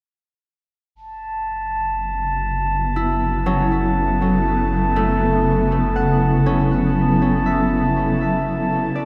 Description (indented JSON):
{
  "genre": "ambient",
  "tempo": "60 BPM",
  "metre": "4/4",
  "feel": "straight",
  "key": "F# minor",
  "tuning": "A4 = 440 Hz",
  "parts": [
    { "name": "granular cloud pad", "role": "sustained chords", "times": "2.3-9.1 s", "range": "C#3 to A4", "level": "-22 LUFS", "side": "equal", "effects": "built-in reverb, shimmer reverb" },
    { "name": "warm sub bass", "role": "bass", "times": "1.0-9.1 s", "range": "F#1 to A1", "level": "-28 LUFS", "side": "equal", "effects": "none" },
    { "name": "glass harmonica", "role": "texture", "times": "1.0-9.1 s", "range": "A5", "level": "-26 LUFS", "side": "equal", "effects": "shimmer reverb" },
    { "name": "concert harp", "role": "arpeggios", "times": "3.0-9.1 s", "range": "F#3 to F#5", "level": "-25 LUFS", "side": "equal", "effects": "delay, shimmer reverb" }
  ],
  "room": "wet lush hall reverb, RT60 2.4 s",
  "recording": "dreamy mix soaked in reverb",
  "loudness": "-19 LUFS",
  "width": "mono",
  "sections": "1.0-9.1 A section",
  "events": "none",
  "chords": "1.0 F#m"
}